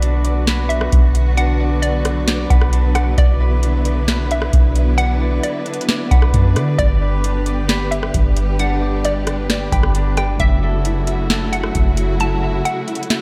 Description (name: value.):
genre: hip hop, atmospheric cloud-rap.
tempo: 133 BPM.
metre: 4/4.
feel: half-time.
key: B minor.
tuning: A4 = 441 Hz.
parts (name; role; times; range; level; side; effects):
hollow square pluck; melody; 0.0-13.2 s; D5 to A5; -27 LUFS; equal; chorus, tape echo.
warm symphonic string section; sustained chords; 0.0-13.2 s; C#3 to B4; -26 LUFS; equal; sidechain pumping.
concert harp; arpeggios; 0.0-13.2 s; D4 to E5; -29 LUFS; equal; tape echo.
soft 808-style bass; bass; 0.0-12.6 s; F#1 to D3; -20 LUFS; equal; none.
booming analog drum machine; drums; 0.0-13.2 s; hi-hat, kick drum, rim click, snare drum; -20 LUFS; equal; none.
wind-like tuned noise texture; texture; 0.0-13.2 s; A3 to F#5; -36 LUFS; equal; none.
room: light reverb, digital ambience.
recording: none.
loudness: -17 LUFS.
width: mono.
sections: 0.0-13.2 A section.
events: none.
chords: 0.0 Bm; 6.8 G; 10.4 F#m7.